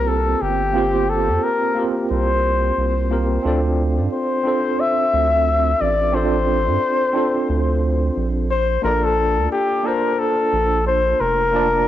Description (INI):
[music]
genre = sunset chillout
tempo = 89 BPM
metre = 4/4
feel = swing 56% on 16ths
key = unclear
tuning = A4 = 441 Hz
[part]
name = warm flugelhorn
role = melody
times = 0.0-11.9 s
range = G4 to E5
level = -19 LUFS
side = left 3 dB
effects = cassette tape, tape echo
[part]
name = tine electric piano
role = accompaniment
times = 0.0-11.9 s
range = Bb3 to A5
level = -23 LUFS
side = moving between left 1 dB and right 6 dB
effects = medium stereo tremolo, auto-pan, cassette tape, tape echo
[part]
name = round analog bass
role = bass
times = 0.0-11.9 s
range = F1 to G2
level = -21 LUFS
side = right 2 dB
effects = none
[sound]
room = moderate spring reverb, RT60 1.2 s, small room ambience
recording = home recording on cassette, nothing above 7.7 kHz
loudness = -16 LUFS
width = side -12 dB against mid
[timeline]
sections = 0.0-11.9 A section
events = none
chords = 0.0 C7sus4; 3.5 Dm7; 8.5 Bbmaj7